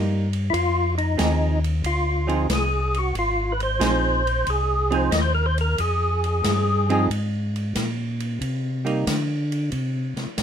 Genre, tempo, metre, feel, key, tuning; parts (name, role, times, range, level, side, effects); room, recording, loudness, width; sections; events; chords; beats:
soul jazz organ trio; 91 BPM; 4/4; swing 69% on 8ths; A4 = 440 Hz
hollow-body jazz guitar; accompaniment; 0.0-9.0 s; F3 to Ab4; -25 LUFS; right 5 dB
mellow tonewheel organ; bass; 0.0-10.4 s; Ab1 to D3; -24 LUFS; equal; slow rotary speaker
open jazz drum kit; drums; 0.3-10.4 s; hi-hat, kick drum, ride cymbal, snare drum; -30 LUFS; equal
percussive tonewheel organ; melody; 0.5-7.1 s; Eb4 to Eb5; -23 LUFS; left 1 dB; slow rotary speaker, overdrive, chorus vibrato
light reverb; minimal, uncompressed stereo recording; -20 LUFS; side -8 dB against mid
0.0-10.4 A section
0.0 Cm7 (rootless); 0.5 Fm7; 8.4 C7(no3)
| 0.52 1.18 1.84 2.49 | 3.15 3.81 4.47 5.12 | 5.78 6.44 7.09 7.75 | 8.41 9.07 9.72 10.38